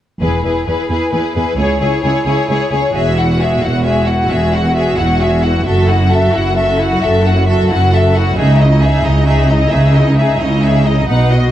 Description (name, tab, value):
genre	cinematic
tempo	88 BPM (dotted quarters)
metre	6/8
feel	straight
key	E major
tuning	A4 = 442 Hz
part	clear symphonic violin section	melody	0.2-11.5 s	B4 to F#5	-18 LUFS	left 3 dB	none
part	clear symphonic violin section	second line	0.2-11.5 s	D#4 to D#5	-20 LUFS	left 2 dB	none
part	clear chamber viola section	accompaniment	0.2-11.5 s	D#4 to F#4	-20 LUFS	equal	none
part	rich symphonic double bass section	bass	0.2-11.5 s	E1 to C#2	-16 LUFS	right 1 dB	none
part	warm symphonic cello section	bass	0.2-11.5 s	C#2 to C#3	-16 LUFS	right 1 dB	none
room	moderate recital hall reverb, RT60 1.3 s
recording	worn, warbling old tape, cassette tape, warbly pitch drift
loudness	-11 LUFS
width	side -12 dB against mid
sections	0.2-2.9 A section; 2.9-11.5 B section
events	build-up 2.9-11.5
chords	0.2 E; 1.6 C#m; 2.9 Eadd9; 5.7 F#m7; 8.4 C#madd9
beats	| 0.21 0.89 | 1.57 2.25 | 2.94 3.62 | 4.30 4.98 | 5.66 6.34 | 7.01 7.69 | 8.37 9.04 | 9.72 10.40 | 11.08